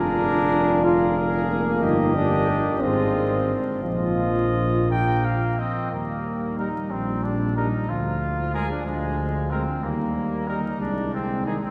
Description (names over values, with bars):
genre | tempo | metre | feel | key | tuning
classical, brass quintet | 61 BPM (dotted quarters) | 6/8 | straight | Eb major | A4 = 438 Hz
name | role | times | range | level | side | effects
clear cornet | melody | 0.0-11.6 s | Ab4 to G5 | -33 LUFS | equal | none
warm trumpet | second line | 0.0-11.7 s | Ab3 to Ab4 | -33 LUFS | equal | none
mellow French horn | accompaniment | 0.0-11.7 s | F3 to Bb4 | -31 LUFS | equal | none
warm trombone | accompaniment | 0.0-11.6 s | Eb3 to F4 | -29 LUFS | equal | none
mellow bass trombone | bass | 0.0-11.6 s | F1 to Eb2 | -28 LUFS | equal | none
room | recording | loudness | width
wet cathedral reverb, RT60 5.0 s | heard from further back in the room, vinyl crackle | -23 LUFS | mono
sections
0.0-5.9 A section; 5.9-11.7 B section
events
none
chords
0.0 Bb7/F; 1.8 Eb/G; 2.8 Fm7/Ab; 3.8 Bbsus4; 5.9 Eb; 7.9 Bb7/D (rootless); 9.8 Eb; 10.8 Ab/C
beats
0.84 | 1.82 2.81 | 3.83 4.90 | 5.92 6.91 | 7.89 8.86 | 9.83 10.81